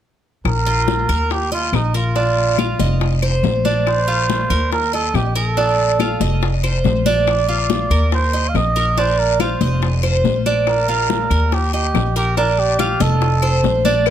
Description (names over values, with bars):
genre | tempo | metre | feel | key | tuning
latin, Cuban son and guajira | 141 BPM | 4/4 | straight | Bb major | A4 = 437 Hz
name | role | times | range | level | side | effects
upright bass | bass | 0.4-14.1 s | F1 to Eb2 | -19 LUFS | left 1 dB | none
trumpet with cup mute | melody | 0.5-13.9 s | Eb4 to F5 | -21 LUFS | right 3 dB | none
bongos and cowbell | percussion | 0.5-14.1 s | none | -26 LUFS | left 9 dB | none
claves | percussion | 0.5-14.1 s | none | -30 LUFS | left 9 dB | none
congas | percussion | 0.5-14.1 s | none | -25 LUFS | left 9 dB | none
guiro | percussion | 0.5-14.1 s | none | -31 LUFS | left 9 dB | none
Cuban tres | arpeggios | 0.7-14.1 s | D4 to Eb5 | -20 LUFS | right 3 dB | tape echo
room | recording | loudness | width
little or no reverb | close, detailed microphones | -15 LUFS | side -10 dB against mid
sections
0.5-14.1 A section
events
none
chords
0.5 Bb5; 1.3 Eb5; 2.2 Bb; 3.0 F5; 3.9 Bb; 4.7 Eb5; 5.6 Bb; 6.4 F5; 7.3 Bb; 8.1 Eb5; 9.0 Bb; 9.8 F5; 10.7 Bb; 11.5 Eb; 12.4 Bb; 13.2 F7